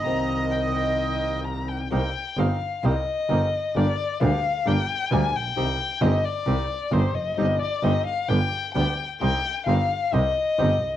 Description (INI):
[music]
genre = tango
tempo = 131 BPM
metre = 4/4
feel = rubato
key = C minor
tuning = A4 = 442 Hz
[part]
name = bandoneon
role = melody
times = 0.0-1.4 s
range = Eb5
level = -26 LUFS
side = right 3 dB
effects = cassette tape
[part]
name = warm violin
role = second line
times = 0.0-11.0 s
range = C5 to Bb5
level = -26 LUFS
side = left 5 dB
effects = cassette tape, plate reverb
[part]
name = flamenco guitar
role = accompaniment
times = 0.0-10.7 s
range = C3 to G4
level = -30 LUFS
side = left 6 dB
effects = cassette tape, plate reverb
[part]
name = bandoneon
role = stabs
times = 0.0-10.8 s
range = Bb3 to G4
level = -34 LUFS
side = right 7 dB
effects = cassette tape, plate reverb
[part]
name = clear double bass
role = bass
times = 0.0-11.0 s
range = F1 to D2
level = -24 LUFS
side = right 2 dB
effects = tube saturation
[sound]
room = moderate studio reverb, RT60 0.6 s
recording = home recording on cassette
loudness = -21 LUFS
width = side -12 dB against mid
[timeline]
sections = 0.0-1.9 A section; 1.9-11.0 B section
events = violin solo 1.9-11.0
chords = 0.0 Cm7; 3.8 Gm; 5.6 Cm; 7.4 Cm/G; 8.3 G; 9.2 Cm